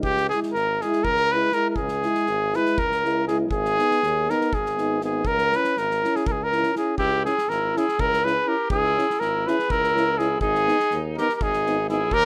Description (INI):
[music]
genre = balkan folk, Balkan brass band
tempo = 243 BPM (eighths)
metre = 7/8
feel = straight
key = C# dorian sharp4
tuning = A4 = 441 Hz
[part]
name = warm trumpet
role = melody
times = 0.0-12.3 s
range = G4 to B4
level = -24 LUFS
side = equal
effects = plate reverb
[part]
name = mellow trombone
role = accompaniment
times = 0.0-12.0 s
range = G#3 to C#4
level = -37 LUFS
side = equal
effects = plate reverb
[part]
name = warm euphonium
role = accompaniment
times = 0.0-12.0 s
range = D#4 to E4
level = -30 LUFS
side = equal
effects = plate reverb
[part]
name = warm tuba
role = bass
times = 0.0-12.3 s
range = G#1 to D#2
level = -33 LUFS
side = equal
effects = none
[part]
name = loose indie drum kit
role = percussion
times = 0.0-12.2 s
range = kick drum, snare drum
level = -36 LUFS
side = equal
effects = none
[part]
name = breathy alto saxophone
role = second line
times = 7.0-12.3 s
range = D#4 to G#4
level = -34 LUFS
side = equal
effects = plate reverb
[sound]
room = moderate studio reverb, RT60 0.5 s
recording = rough home demo mix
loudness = -23 LUFS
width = mono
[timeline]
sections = 0.0-7.0 A section; 7.0-12.3 A section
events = none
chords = 0.0 C#m; 3.5 G#m; 5.2 C#m; 10.4 G#m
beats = | 0.03 0.28 0.53 0.78 1.03 1.27 1.52 | 1.77 2.02 2.27 2.52 2.77 3.01 3.26 | 3.51 3.76 4.01 4.25 4.50 4.75 5.00 | 5.25 5.49 5.74 5.99 6.23 6.48 6.73 | 6.97 7.22 7.46 7.71 7.96 8.20 8.45 | 8.69 8.94 9.18 9.43 9.67 9.92 10.16 | 10.41 10.65 10.90 11.14 11.39 11.63 11.88 | 12.12